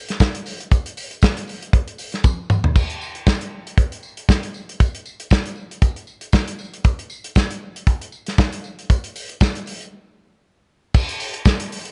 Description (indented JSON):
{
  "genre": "disco",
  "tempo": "117 BPM",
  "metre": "4/4",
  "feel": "swing 56% on 16ths",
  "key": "none",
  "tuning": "none",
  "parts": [
    { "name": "warm soul drum kit", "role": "drums", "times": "0.1-11.9 s", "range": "crash cymbal, hi-hat, kick drum, snare drum, toms", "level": "-20 LUFS", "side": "equal", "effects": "none" },
    { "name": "tambourine", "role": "percussion", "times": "0.2-11.6 s", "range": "none", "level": "-41 LUFS", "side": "equal", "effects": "none" }
  ],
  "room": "little or no reverb",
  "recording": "dark, warm production, nothing above 11.0 kHz",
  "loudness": "-21 LUFS",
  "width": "mono",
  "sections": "0.0-2.8 A section; 2.8-10.9 B section",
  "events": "drum fill 2.2-2.8; break 9.9-10.9",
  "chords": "none"
}